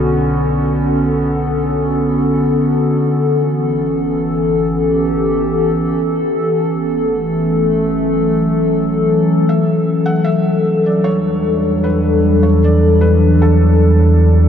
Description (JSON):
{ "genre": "ambient", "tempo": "free time", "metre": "none", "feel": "none", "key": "unclear", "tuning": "A4 = 441 Hz", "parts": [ { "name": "warbly tape-like pad", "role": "sustained chords", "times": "0.0-14.5 s", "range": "D3 to A4", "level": "-13 LUFS", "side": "left 1 dB", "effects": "chorus, built-in reverb" }, { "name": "deep rumbling drone", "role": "bass", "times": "0.0-14.5 s", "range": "F#1 to E2", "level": "-17 LUFS", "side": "right 1 dB", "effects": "built-in reverb" }, { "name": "felt-muted upright piano", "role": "melody", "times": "9.5-14.5 s", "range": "A4 to F#5", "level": "-26 LUFS", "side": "right 2 dB", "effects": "ping-pong delay" } ], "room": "wet huge ambient reverb, RT60 8.6 s", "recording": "in a vast, echoing space, cassette tape", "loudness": "-12 LUFS", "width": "side -8 dB against mid", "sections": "0.0-9.5 A section; 9.5-14.5 B section", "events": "fade-out on synth drone 0.0-9.5", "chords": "0.0 Bm9; 3.2 A9; 6.3 F#m7; 9.5 Em11" }